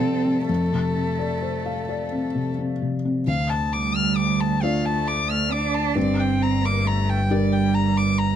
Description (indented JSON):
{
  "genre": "neoclassical piano and strings",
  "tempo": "42-45 BPM (dotted quarters)",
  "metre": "6/8",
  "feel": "rubato",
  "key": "unclear",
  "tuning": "A4 = 440 Hz",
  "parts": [
    { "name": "dark violin", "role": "melody", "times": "0.0-8.4 s", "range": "A4 to F6", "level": "-26 LUFS", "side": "left 4 dB", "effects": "none" },
    { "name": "rich cello", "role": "second line", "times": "0.0-8.4 s", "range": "G3 to D4", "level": "-26 LUFS", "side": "right 8 dB", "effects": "tape echo" },
    { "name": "felt-muted upright piano", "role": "accompaniment", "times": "0.0-8.4 s", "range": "D2 to F5", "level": "-25 LUFS", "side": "left 3 dB", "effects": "none" },
    { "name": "clear double bass", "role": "bass", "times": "3.3-8.4 s", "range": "G1 to D2", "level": "-24 LUFS", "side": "equal", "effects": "none" }
  ],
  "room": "light reverb",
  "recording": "close, detailed microphones",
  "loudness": "-20 LUFS",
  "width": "side -10 dB against mid",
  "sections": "0.0-3.3 A section; 3.3-8.4 B section",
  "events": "none",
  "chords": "0.0 F6; 3.3 Dm; 6.0 Gm"
}